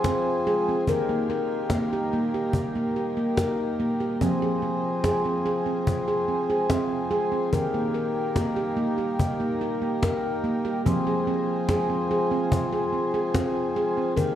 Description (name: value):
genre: world meditative, meditative tuned percussion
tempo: 72 BPM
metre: 4/4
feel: straight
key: F minor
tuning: A4 = 440 Hz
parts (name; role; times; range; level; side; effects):
- pedal harmonium; sustained chords; 0.0-14.4 s; Eb3 to Ab4; -28 LUFS; left 2 dB; shimmer reverb
- handpan; arpeggios; 0.0-14.4 s; Eb3 to Bb4; -25 LUFS; right 1 dB; shimmer reverb
- cajon; percussion; 0.0-14.4 s; none; -28 LUFS; left 1 dB; none
room: wet scoring stage reverb, RT60 1.5 s, small room ambience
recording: none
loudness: -23 LUFS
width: side -11 dB against mid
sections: 0.0-14.4 A section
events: none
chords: 0.0 Fm; 0.9 Eb; 4.2 Fm; 7.5 Eb; 10.9 Fm